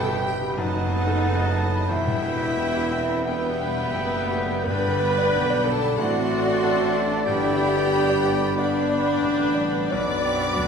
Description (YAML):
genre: classical, romantic movement for piano and orchestra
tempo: 77-97 BPM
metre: 4/4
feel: rubato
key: unclear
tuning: A4 = 438 Hz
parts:
  - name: clear grand piano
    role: melody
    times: 0.0-10.7 s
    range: B1 to B5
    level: -28 LUFS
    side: left 2 dB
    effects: none
  - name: rich studio violin section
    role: melody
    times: 0.0-10.7 s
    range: G5 to C6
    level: -38 LUFS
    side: left 2 dB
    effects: none
  - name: clear oboe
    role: second line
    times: 0.0-10.7 s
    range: F#5 to A5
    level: -36 LUFS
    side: equal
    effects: none
  - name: mellow hollow concert flute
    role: second line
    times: 0.0-10.7 s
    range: B5 to C6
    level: -35 LUFS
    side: right 2 dB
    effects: none
  - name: rich studio violin section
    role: second line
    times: 0.0-10.7 s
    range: B4 to D6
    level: -34 LUFS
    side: left 3 dB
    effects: none
  - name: warm clarinet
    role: second line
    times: 0.0-10.7 s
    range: D5 to F#5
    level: -35 LUFS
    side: equal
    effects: none
  - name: clear bassoon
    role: accompaniment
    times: 0.0-10.7 s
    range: A3 to D4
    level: -33 LUFS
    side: equal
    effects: none
  - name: rich studio viola section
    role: accompaniment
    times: 0.0-10.7 s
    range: B3 to D5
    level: -31 LUFS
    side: right 3 dB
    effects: none
  - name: dark trombone section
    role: sustained chords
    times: 0.0-10.7 s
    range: G2 to C4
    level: -35 LUFS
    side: right 1 dB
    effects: none
  - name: mellow French horn section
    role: sustained chords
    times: 0.0-10.7 s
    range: B3 to D5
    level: -26 LUFS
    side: left 1 dB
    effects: none
  - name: dark trumpet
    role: stabs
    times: 0.0-10.7 s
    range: D5 to G5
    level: -31 LUFS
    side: equal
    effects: none
  - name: mellow tuba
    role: bass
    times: 0.0-10.7 s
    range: E1 to D2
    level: -33 LUFS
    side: right 3 dB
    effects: none
  - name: rich studio double bass section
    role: bass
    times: 0.0-10.7 s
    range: E1 to D2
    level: -31 LUFS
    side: right 2 dB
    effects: none
  - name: rich studio cello section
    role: bass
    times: 0.6-10.7 s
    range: F#3 to E4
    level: -34 LUFS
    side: right 3 dB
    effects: none
  - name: timpani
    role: percussion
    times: 4.7-5.6 s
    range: G2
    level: -35 LUFS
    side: left 1 dB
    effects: none
room: wet scoring stage reverb, RT60 1.7 s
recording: minimal, uncompressed stereo recording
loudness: -20 LUFS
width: side -6 dB against mid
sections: 0.0-10.7 A section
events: none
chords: 0.0 Em; 0.6 B7/F#; 1.9 Em; 4.7 G; 6.0 D7/A; 7.3 G; 9.9 Bm